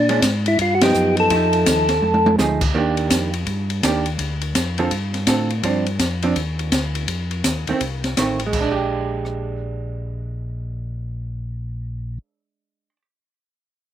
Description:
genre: soul jazz organ trio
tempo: 166 BPM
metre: 4/4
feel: swing 64% on 8ths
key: Bb mixolydian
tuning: A4 = 441 Hz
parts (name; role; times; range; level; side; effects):
- percussive tonewheel organ; melody; 0.0-2.4 s; D4 to A4; -18 LUFS; left 1 dB; slow rotary speaker
- mellow tonewheel organ; bass; 0.0-12.2 s; A1 to Bb2; -24 LUFS; equal; overdrive, chorus vibrato, slow rotary speaker
- vintage hollow-body jazz guitar; accompaniment; 0.1-13.0 s; D3 to A4; -22 LUFS; right 4 dB; slapback echo
- open jazz drum kit; drums; 0.1-9.4 s; crash cymbal, hi-hat, kick drum, ride cymbal, rim click, snare drum, toms; -22 LUFS; equal; none
room: little or no reverb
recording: recorded outdoors, with no room sound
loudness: -18 LUFS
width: side -10 dB against mid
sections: 0.0-2.7 A section; 2.7-8.5 B section; 8.5-11.4 C section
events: band accent 0.8; drum fill 2.0-2.4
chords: 0.0 Bb7#9; 0.6 Gaug7; 1.3 F7#9; 2.7 Ebmaj7; 4.2 Dm7; 5.6 G7sus4; 7.1 F7; 8.5 Bb6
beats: 0.22 0.58 0.94 | 1.30 1.66 2.02 2.38 | 2.75 3.11 3.47 3.83 | 4.19 4.55 4.91 5.28 | 5.64 6.00 6.36 6.72 | 7.08 7.45 7.81 8.17 | 8.53 8.89 9.25 9.62 | 9.98 10.34 10.70 11.06

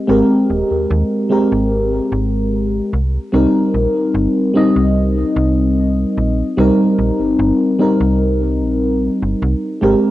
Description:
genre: vaporwave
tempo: 74 BPM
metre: 4/4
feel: straight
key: unclear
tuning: A4 = 440 Hz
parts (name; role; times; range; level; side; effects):
- mellow FM electric piano; accompaniment; 0.0-10.1 s; G3 to Eb5; -14 LUFS; equal; lush chorus, cassette tape, tape echo
- slap-like FM bass; bass; 0.1-9.9 s; Eb1 to Eb2; -18 LUFS; right 1 dB; tube saturation
room: light reverb, digital ambience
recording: home recording on cassette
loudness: -13 LUFS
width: side -15 dB against mid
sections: 0.0-10.1 A section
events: none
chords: 0.0 Abmaj9; 2.9 Cm7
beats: | 0.09 0.91 1.72 2.53 | 3.34 4.15 4.96 5.77 | 6.58 7.39 8.20 9.01 | 9.82

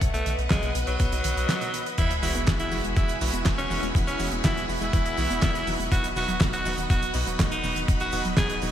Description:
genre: italo disco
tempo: 122 BPM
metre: 4/4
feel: straight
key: E major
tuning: A4 = 440 Hz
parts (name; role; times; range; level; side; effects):
- string machine, full ensemble; sustained chords; 0.0-8.7 s; E4 to D#6; -32 LUFS; left 1 dB; ensemble chorus
- warbly dusty pluck; arpeggios; 0.0-8.7 s; A2 to B3; -35 LUFS; left 1 dB; chorus, digital delay
- round analog bass; bass; 0.0-8.7 s; D#1 to B1; -32 LUFS; equal; none
- damped 70s drum kit; drums; 0.0-8.7 s; cabasa, crash cymbal, handclaps, hi-hat, snare drum; -30 LUFS; right 1 dB; gated reverb
- electronic kick drum; drums; 0.0-8.5 s; none; -25 LUFS; equal; overdrive
- raspy alto saxophone; melody; 0.1-8.6 s; F#3 to G#4; -29 LUFS; equal; digital delay
- sub drop; sound effects; 2.0-3.9 s; none; -34 LUFS; left 1 dB; none
- bright electric grand piano; stabs; 2.2-8.7 s; F#3 to F#4; -34 LUFS; right 4 dB; none
room: moderate lush hall reverb, RT60 2.1 s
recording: bright 1980s-style digital production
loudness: -22 LUFS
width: side -10 dB against mid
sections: 0.0-2.0 A section; 2.0-8.7 B section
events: break 1.5-2.0; impact 2.0-4.0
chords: 0.0 B; 2.0 Eadd9; 5.9 B/D#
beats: | 0.01 0.51 1.00 1.49 | 1.98 2.47 2.97 3.46 | 3.95 4.44 4.93 5.42 | 5.92 6.41 6.90 7.39 | 7.88 8.38

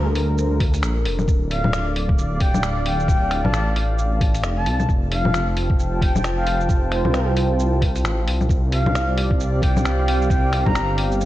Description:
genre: future garage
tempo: 133 BPM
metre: 4/4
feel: swing 60% on 16ths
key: unclear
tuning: A4 = 436 Hz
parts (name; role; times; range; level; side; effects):
- breathy flute-like synth lead; melody; 0.0-10.9 s; C5 to Bb5; -27 LUFS; left 1 dB; wide subtle chorus, analog delay
- dark analog pad; sustained chords; 0.0-11.3 s; G3 to A5; -26 LUFS; equal; chorus, sidechain pumping
- dark detuned saw bass; bass; 0.0-11.3 s; D1 to D2; -21 LUFS; equal; sidechain pumping
- lo-fi sampler-style drum kit; drums; 0.2-11.3 s; bongos, finger snaps, hi-hat, shaker; -26 LUFS; left 1 dB; vintage 12-bit sampler grit, small room reverb
- electronic kick drum; drums; 0.6-10.7 s; none; -19 LUFS; equal; vintage 12-bit sampler grit, small room reverb
room: moderate lush hall reverb, RT60 1.8 s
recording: dreamy mix soaked in reverb, cassette tape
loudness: -18 LUFS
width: side -14 dB against mid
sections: 0.0-11.3 A section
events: none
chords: 0.0 Gm7; 1.3 Dm; 4.9 Fadd9; 8.5 Csus4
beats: 0.38 0.83 | 1.28 1.73 2.18 2.63 | 3.09 3.54 3.99 4.44 | 4.89 5.34 5.79 6.24 | 6.70 7.15 7.60 8.05 | 8.50 8.95 9.40 9.85 | 10.30 10.76 11.21

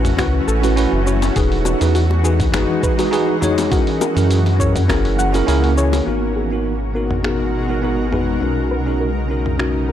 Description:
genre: sunset chillout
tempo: 102 BPM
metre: 4/4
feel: swing 53% on 16ths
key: G# minor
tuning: A4 = 440 Hz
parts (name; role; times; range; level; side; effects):
- bell-like tine electric piano; accompaniment; 0.0-9.9 s; B3 to C#5; -20 LUFS; moving between left 5 dB and right 5 dB; auto-pan, analog delay
- shimmering ambient pad; sustained chords; 0.0-9.9 s; B2 to A#4; -23 LUFS; equal; chorus, built-in reverb
- round analog bass; bass; 0.0-9.9 s; E1 to F#2; -19 LUFS; equal; none
- dusty soul sampler-style drum kit; drums; 0.0-9.7 s; cabasa, finger snaps, hi-hat, toms; -26 LUFS; right 1 dB; none
- soft round pluck; arpeggios; 0.2-9.9 s; F#4 to F#5; -28 LUFS; left 2 dB; chorus, vintage 12-bit sampler grit, analog delay
- electronic kick drum; drums; 0.2-5.0 s; none; -21 LUFS; equal; none
- bongos; percussion; 0.2-6.0 s; none; -25 LUFS; left 4 dB; none
room: digital ambience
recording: dry, gritty hardware recording, transformer saturation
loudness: -15 LUFS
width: side -10 dB against mid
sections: 0.0-6.1 A section; 6.1-9.9 B section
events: none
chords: 0.0 A6; 1.4 Emaj9; 3.7 F#7; 6.1 G#m9; 8.4 Bmaj9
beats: 0.18 0.77 | 1.36 1.95 2.54 3.13 | 3.71 4.30 4.89 5.48 | 6.07 6.66 7.24 7.83 | 8.42 9.01 9.60

